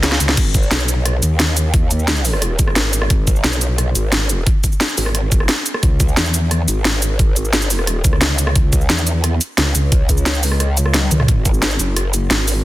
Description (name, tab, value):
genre	dark technical drum and bass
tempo	176 BPM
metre	4/4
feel	straight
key	G# minor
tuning	A4 = 440 Hz
part	growl bass	bass	0.0-12.6 s	F#1 to E2	-18 LUFS	equal	distortion, chorus, sidechain pumping
part	drum and bass drum kit	drums	0.0-12.5 s	crash cymbal, hi-hat, rim click, shaker, snare drum, toms	-18 LUFS	equal	overdrive
part	electronic kick drum	drums	0.4-11.5 s	none	-15 LUFS	equal	overdrive
room	little or no reverb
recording	dense, heavily limited modern master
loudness	-14 LUFS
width	side -16 dB against mid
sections	0.0-11.3 A section; 11.3-12.6 A section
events	drop 0.0-11.3, 11.3-12.6; drum fill 0.0-0.4, 10.9-11.3; kick drops out 10.6-11.3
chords	none